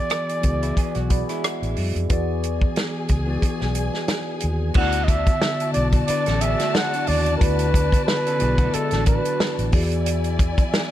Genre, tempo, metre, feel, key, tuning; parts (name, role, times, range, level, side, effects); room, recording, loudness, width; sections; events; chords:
lush 1970s-style soul; 90 BPM; 4/4; swing 54% on 16ths; D lydian; A4 = 440 Hz
breathy flugelhorn; melody; 0.0-9.7 s; A4 to F#5; -24 LUFS; equal
warm studio string section; second line; 0.0-10.9 s; E4 to A5; -32 LUFS; left 4 dB
mellow tine electric piano; accompaniment; 0.0-10.9 s; D3 to B5; -27 LUFS; left 2 dB; phaser
warm soul drum kit; drums; 0.1-10.9 s; crash cymbal, hi-hat, kick drum, rim click, snare drum; -22 LUFS; equal
vintage muted fingered electric bass; bass; 0.4-10.5 s; A1 to F#2; -24 LUFS; equal
electric guitar through a small old amp; riff; 0.6-2.1, 6.1-9.7 s; F#3 to B4; -32 LUFS; right 10 dB
small room ambience; -19 LUFS; side -12 dB against mid
0.0-2.1 A section; 2.1-4.8 B section; 4.8-10.9 C section
tine electric piano fill 0.8-2.1
0.0 E7; 4.8 D6; 9.7 E7